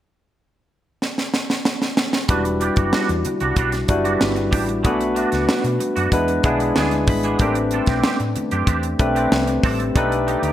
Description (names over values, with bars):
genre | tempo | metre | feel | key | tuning
polished 1980s jazz-funk pop | 94 BPM | 4/4 | straight | E minor | A4 = 440 Hz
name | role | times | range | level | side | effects
tight funk drum kit | drums | 1.0-10.5 s | hi-hat, kick drum, snare drum | -21 LUFS | right 1 dB | gated reverb
barky tine electric piano | accompaniment | 2.3-10.5 s | G3 to B5 | -20 LUFS | left 2 dB | overdrive, lush chorus
twangy electric guitar | riff | 2.3-10.5 s | G3 to A4 | -26 LUFS | right 5 dB | ensemble chorus
hollow-body short-scale fingered electric bass | bass | 2.3-10.5 s | E1 to B2 | -25 LUFS | equal | none
congas | percussion | 2.3-10.4 s | none | -37 LUFS | equal | none
room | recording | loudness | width
moderate plate reverb, RT60 1.9 s, studio ambience | bright 1980s-style digital production | -17 LUFS | side -12 dB against mid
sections
0.0-2.3 A section; 2.3-10.5 B section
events
drum fill 1.0-2.3; tine electric piano fill 6.4-7.4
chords
0.0 N.C.; 2.3 Em9; 4.8 Bm7; 6.1 E7; 7.4 Am11; 10.0 B7alt